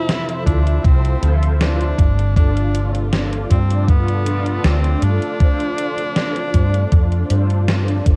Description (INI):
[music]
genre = vaporwave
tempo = 79 BPM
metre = 4/4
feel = straight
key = unclear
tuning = A4 = 439 Hz
[part]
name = breathy tenor saxophone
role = melody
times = 0.0-7.7 s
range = B3 to E4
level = -28 LUFS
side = equal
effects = vintage 12-bit sampler grit, tape echo
[part]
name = mellow synth brass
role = accompaniment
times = 0.0-8.2 s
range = F3 to D5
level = -27 LUFS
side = equal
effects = ensemble chorus, cassette tape
[part]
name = dark studio string section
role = sustained chords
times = 0.0-8.2 s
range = C3 to E5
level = -34 LUFS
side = equal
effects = vintage 12-bit sampler grit
[part]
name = gated 80s digital drum machine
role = drums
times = 0.1-8.2 s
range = hi-hat, snare drum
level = -25 LUFS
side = equal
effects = gated reverb, gated reverb snare
[part]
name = woody fretless electric bass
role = bass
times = 0.5-8.2 s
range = G1 to G2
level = -19 LUFS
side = equal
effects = none
[part]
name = electronic kick drum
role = drums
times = 0.5-8.2 s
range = none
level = -17 LUFS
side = equal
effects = none
[sound]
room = digital ambience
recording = dark, warm production, cassette tape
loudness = -17 LUFS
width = mono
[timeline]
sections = 0.0-8.2 A section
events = band accent 7.7-8.1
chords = 0.0 Dm9; 2.0 G9sus4